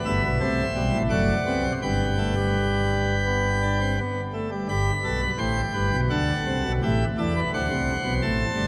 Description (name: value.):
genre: classical, baroque-style 4-part fugue for pipe organ.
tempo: 85 BPM.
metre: 4/4.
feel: straight.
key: G major.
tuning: A4 = 443 Hz.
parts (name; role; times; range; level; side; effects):
pipe organ, plenum; solo; 0.0-8.7 s; F#1 to B5; -24 LUFS; equal; none.
room: wet cathedral reverb, RT60 5.9 s.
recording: none.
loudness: -24 LUFS.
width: mono.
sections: 0.0-4.7 A section; 4.7-8.7 B section.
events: none.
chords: 0.4 Am/C; 1.1 D/F#; 1.8 G; 6.1 D; 7.5 D7.